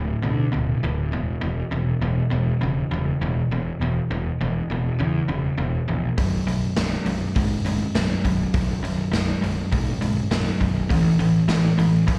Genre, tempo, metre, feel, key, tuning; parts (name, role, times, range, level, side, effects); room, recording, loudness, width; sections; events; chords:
classic rock; 101 BPM; 4/4; straight; A4 = 440 Hz
cranked stack guitar; riff; 0.0-12.2 s; B1 to F#3; -30 LUFS; equal
crunchy overdriven guitar; riff; 0.0-12.2 s; B1 to F#3; -27 LUFS; equal; slapback echo
fuzz picked electric bass; bass; 0.0-12.2 s; B0 to E2; -28 LUFS; equal; overdrive
raw garage drum kit; drums; 6.2-12.2 s; hi-hat, kick drum, snare drum; -27 LUFS; equal
moderate club reverb, RT60 0.6 s; live gig heard through the venue's PA, club reverb; -23 LUFS; mono
0.0-12.2 A section
0.0 D5; 1.1 E5; 6.2 B5; 10.9 A5